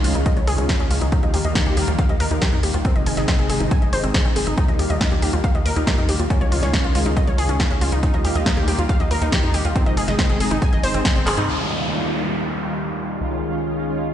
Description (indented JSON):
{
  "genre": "uplifting trance",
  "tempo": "139 BPM",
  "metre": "4/4",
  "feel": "straight",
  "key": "Eb mixolydian",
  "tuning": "A4 = 440 Hz",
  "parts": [
    { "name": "analog string pad", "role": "sustained chords", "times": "0.0-14.0 s", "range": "C3 to F4", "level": "-25 LUFS", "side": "left 1 dB", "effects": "ensemble chorus, sidechain pumping" },
    { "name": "wide unison pluck", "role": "arpeggios", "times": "0.0-11.4 s", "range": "C4 to Ab5", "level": "-25 LUFS", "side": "left 1 dB", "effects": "sidechain pumping, ping-pong delay" },
    { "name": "tight sequencer bass", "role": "bass", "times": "0.0-14.1 s", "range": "Ab1 to Ab2", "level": "-23 LUFS", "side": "equal", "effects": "sidechain pumping" },
    { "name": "punchy analog drum machine", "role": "drums", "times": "0.0-11.5 s", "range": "handclaps, hi-hat, snare drum", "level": "-26 LUFS", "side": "equal", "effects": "none" },
    { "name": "electronic kick drum", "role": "drums", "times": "0.3-11.1 s", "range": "none", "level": "-20 LUFS", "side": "equal", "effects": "none" },
    { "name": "downlifter", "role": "sound effects", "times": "11.5-14.1 s", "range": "none", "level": "-26 LUFS", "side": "equal", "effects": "none" }
  ],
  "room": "light reverb",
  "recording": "played on a big sound system in a bare room, stone room reverb, nothing above 10.9 kHz",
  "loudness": "-17 LUFS",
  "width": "side -10 dB against mid",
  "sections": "0.0-11.5 A section; 11.5-14.1 B section",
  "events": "filter sweep on synth pluck 0.0-11.5; drum fill 11.3; band accent 11.3",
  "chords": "0.0 Dbadd9; 1.1 Ebadd9; 2.9 Ab; 4.6 Ebadd9; 6.3 Dbadd9; 8.0 Ebadd9; 9.8 Ab; 11.5 Ebadd9; 13.2 Dbadd9"
}